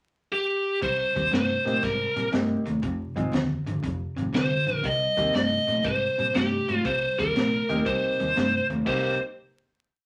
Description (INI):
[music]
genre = electric blues shuffle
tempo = 119 BPM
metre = 4/4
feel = swing 68% on 8ths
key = C minor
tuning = A4 = 440 Hz
[part]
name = biting lead guitar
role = melody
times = 0.3-9.2 s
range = G4 to Eb5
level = -27 LUFS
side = equal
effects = overdrive
[part]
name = cranked stack guitar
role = riff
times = 0.8-9.1 s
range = F2 to G4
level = -32 LUFS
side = equal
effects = overdrive
[part]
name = vintage muted fingered electric bass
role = bass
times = 0.8-9.2 s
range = F1 to Bb2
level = -36 LUFS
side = equal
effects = none
[part]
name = crunchy breakbeat drum kit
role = drums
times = 0.8-9.0 s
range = crash cymbal, hi-hat, kick drum, snare drum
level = -32 LUFS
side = equal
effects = none
[part]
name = clear concert grand piano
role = accompaniment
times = 1.6-9.2 s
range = Ab3 to G4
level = -35 LUFS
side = equal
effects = none
[sound]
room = moderate studio reverb, RT60 0.6 s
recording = vinyl crackle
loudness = -25 LUFS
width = mono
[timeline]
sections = 0.0-0.8 pickup bar; 0.8-8.9 head; 8.9-10.1 final chord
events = none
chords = 0.0 N.C.; 0.8 Cm7; 2.8 Fm7; 4.8 Cm7